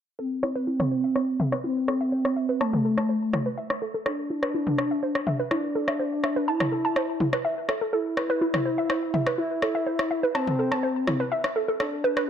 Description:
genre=melodic techno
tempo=124 BPM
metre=4/4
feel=straight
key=A minor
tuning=A4 = 438 Hz
part: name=expressive synth lead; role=melody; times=0.2-12.3 s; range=A3 to E4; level=-27 LUFS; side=equal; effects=chorus, dub echo
part: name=warbly dusty pluck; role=arpeggios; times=0.2-12.2 s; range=E4 to A5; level=-28 LUFS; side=right 1 dB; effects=chorus, ping-pong delay
part: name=deep house drum kit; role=drums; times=0.4-12.3 s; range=rim click, toms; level=-28 LUFS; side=left 1 dB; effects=low-pass filter on snare, low-pass filter on toms
room=light reverb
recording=none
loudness=-23 LUFS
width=side -8 dB against mid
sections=0.2-12.3 A section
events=filter sweep on drum 0.2-12.3; filter sweep on synth arpeggio sound 0.2-12.3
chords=0.2 Am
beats=| 0.19 0.67 1.16 1.64 | 2.12 2.61 3.09 3.58 | 4.06 4.54 5.03 5.51 | 6.00 6.48 6.96 7.45 | 7.93 8.41 8.90 9.38 | 9.87 10.35 10.83 11.32 | 11.80 12.29

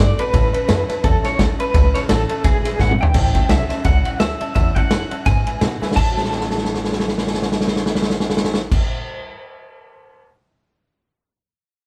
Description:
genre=rockabilly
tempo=170 BPM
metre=4/4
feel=swing 58% on 8ths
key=A mixolydian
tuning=A4 = 440 Hz
part: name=electric guitar through a small old amp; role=melody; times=0.0-8.7 s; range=G#4 to A5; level=-25 LUFS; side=equal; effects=tremolo
part: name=picked steel-string acoustic guitar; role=accompaniment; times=0.0-9.3 s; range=E2 to F#4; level=-34 LUFS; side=equal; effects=none
part: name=tack piano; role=accompaniment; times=0.0-8.7 s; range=B4 to C6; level=-35 LUFS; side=equal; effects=none
part: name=upright bass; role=bass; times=0.0-8.7 s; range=E1 to B2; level=-24 LUFS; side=equal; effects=none
part: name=vintage drum kit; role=drums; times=0.2-10.2 s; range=crash cymbal, kick drum, ride cymbal, snare drum, toms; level=-20 LUFS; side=equal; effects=none
room=moderate large studio reverb, RT60 0.9 s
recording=band playing live in one room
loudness=-18 LUFS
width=mono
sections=0.0-3.1 A section; 3.1-6.0 B section; 6.0-8.8 C section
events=drum fill 2.8-3.1, 5.8, 6.1-8.7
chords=0.3 A7; 2.4 E7; 3.1 A7; 5.3 E7; 6.0 A6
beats=| 0.34 0.69 1.04 1.39 | 1.74 2.09 2.44 2.80 | 3.15 3.50 3.85 4.20 | 4.55 4.91 5.26 5.61 | 5.96 6.32 6.67 7.02 | 7.37 7.72 8.08 8.43

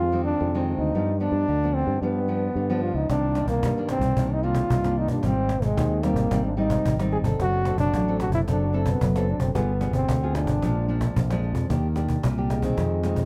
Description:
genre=samba and choro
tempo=112 BPM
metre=4/4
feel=straight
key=C minor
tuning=A4 = 440 Hz
part: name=breathy trombone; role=melody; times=0.0-13.3 s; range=Ab3 to Ab4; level=-29 LUFS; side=equal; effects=tape echo
part: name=nylon-string guitar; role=accompaniment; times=0.0-13.3 s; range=F2 to A4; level=-31 LUFS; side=equal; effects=none
part: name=fingered electric bass with an envelope filter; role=bass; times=0.0-13.2 s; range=F#1 to G2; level=-28 LUFS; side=equal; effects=none
part: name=cajon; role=drums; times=3.1-13.3 s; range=none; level=-30 LUFS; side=equal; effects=none
room=light reverb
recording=none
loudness=-24 LUFS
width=mono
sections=0.0-11.7 A section; 11.7-13.3 B section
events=trombone solo 11.7-13.3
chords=0.0 Fm7; 0.9 G7; 3.1 Cm9; 5.3 Abmaj7; 7.4 D7/F#; 9.6 G7b9; 10.6 Bb7; 11.7 Ebmaj7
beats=0.41 | 0.94 1.48 2.02 2.56 | 3.10 3.64 4.17 4.71 | 5.25 5.79 6.33 6.87 | 7.40 7.94 8.48 9.02 | 9.55 10.09 10.63 11.17 | 11.71 12.25 12.79

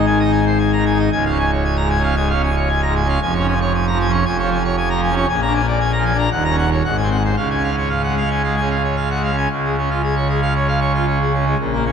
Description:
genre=classical, organ toccata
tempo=115 BPM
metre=4/4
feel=straight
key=Db major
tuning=A4 = 440 Hz
part: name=pipe organ, full organ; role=solo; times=0.0-11.9 s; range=Db1 to Bb5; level=-15 LUFS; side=equal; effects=none
room=wet cathedral reverb, RT60 4.3 s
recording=none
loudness=-15 LUFS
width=side -7 dB against mid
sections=0.0-9.5 A section; 9.5-11.9 A section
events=none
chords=0.0 Ab; 1.1 Db; 3.2 Db/F; 5.3 Bb7; 6.3 Ebm7; 6.8 Ab7; 7.4 Db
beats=0.07 0.60 | 1.12 1.65 2.17 2.70 | 3.22 3.73 4.25 4.77 | 5.28 5.79 6.31 6.83 | 7.36 7.90 8.44 8.97 | 9.51 10.03 10.55 11.07 | 11.58

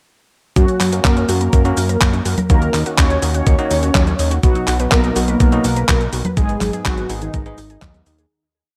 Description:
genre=italo disco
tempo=124 BPM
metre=4/4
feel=straight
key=unclear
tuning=A4 = 440 Hz
part: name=mellow synth brass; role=melody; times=0.6-8.2 s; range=D#3 to C#5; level=-23 LUFS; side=equal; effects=chorus, cassette tape, digital delay
part: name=unison pluck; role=arpeggios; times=0.6-8.3 s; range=G#3 to B4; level=-30 LUFS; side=equal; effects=digital delay
part: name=bell-like tine electric piano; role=stabs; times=0.6-7.9 s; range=G#2 to G#4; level=-28 LUFS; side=equal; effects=vintage 12-bit sampler grit
part: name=fat analog bass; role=bass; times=0.6-8.3 s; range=G#1 to F#2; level=-22 LUFS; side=equal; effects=tube saturation
part: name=clean 12-bit digital drum machine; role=drums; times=0.6-8.3 s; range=cabasa, congas, handclaps, hi-hat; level=-23 LUFS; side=equal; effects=gated reverb
part: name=electronic kick drum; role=drums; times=0.6-7.9 s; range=none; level=-17 LUFS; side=equal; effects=none
room=digital ambience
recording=none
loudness=-16 LUFS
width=mono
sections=0.6-8.3 chorus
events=fade-out 5.7-8.3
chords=0.6 F#; 2.5 D#m7; 4.4 B; 6.4 G#m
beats=| 0.56 1.05 1.53 2.01 | 2.50 2.98 3.47 3.95 | 4.43 4.92 5.40 5.88 | 6.37 6.85 7.34 7.82

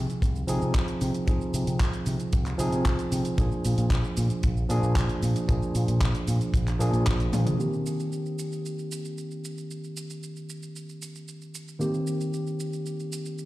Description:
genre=nu-disco, nu disco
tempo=114 BPM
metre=4/4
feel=straight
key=C minor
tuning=A4 = 440 Hz
part: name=tine electric piano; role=accompaniment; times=0.0-13.5 s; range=Eb3 to Ab4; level=-29 LUFS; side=right 1 dB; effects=overdrive, vintage 12-bit sampler grit, sidechain pumping, low-pass filter, ping-pong delay
part: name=fingered electric bass with an envelope filter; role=bass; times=0.0-7.4 s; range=Bb1 to C3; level=-27 LUFS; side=equal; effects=none
part: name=pop drum kit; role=drums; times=0.1-13.5 s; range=handclaps, hi-hat, shaker, toms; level=-36 LUFS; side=equal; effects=overdrive
part: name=kick drum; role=drums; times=0.2-7.2 s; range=none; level=-26 LUFS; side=equal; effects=none
room=light reverb, digital ambience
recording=played on a big sound system in a bare room, large studio reverb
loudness=-24 LUFS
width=side -17 dB against mid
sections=0.0-7.6 A section; 7.6-13.5 B section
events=drum fill 7.3; filter sweep on tine electric piano 7.6-13.5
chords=0.0 Fm7/C; 3.4 Bb7; 7.6 Cm7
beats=0.23 0.75 | 1.28 1.81 2.33 2.86 | 3.38 3.91 4.44 4.96 | 5.49 6.02 6.54 7.07 | 7.59 8.12 8.65 9.17 | 9.70 10.23 10.75 11.28 | 11.81 12.33 12.86 13.38

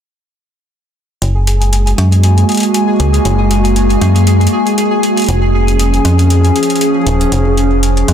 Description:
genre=IDM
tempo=118 BPM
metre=4/4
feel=swing 56% on 16ths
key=Gb major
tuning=A4 = 441 Hz
part: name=warbly tape-like pad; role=sustained chords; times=1.6-8.1 s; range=F3 to Ab4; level=-14 LUFS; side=right 1 dB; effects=chorus, built-in reverb
part: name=metallic FM bass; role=bass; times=1.2-8.1 s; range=Eb1 to Gb2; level=-11 LUFS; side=equal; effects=none
part: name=electronic hi-hat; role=drums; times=1.2-8.1 s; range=none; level=-21 LUFS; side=left 1 dB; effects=none
part: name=pulsing gated texture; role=texture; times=1.2-8.1 s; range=Ab4 to Ab5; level=-19 LUFS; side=left 3 dB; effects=chorus, built-in reverb
room=light reverb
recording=dense, heavily limited modern master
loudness=-9 LUFS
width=side -9 dB against mid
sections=1.2-8.1 A section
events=filter sweep on FM bass 1.2-8.1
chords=1.2 Gbadd9; 5.3 Db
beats=| 1.22 1.73 2.24 2.75 | 3.25 3.76 4.27 4.78 | 5.29 5.80 6.30 6.81 | 7.32 7.83

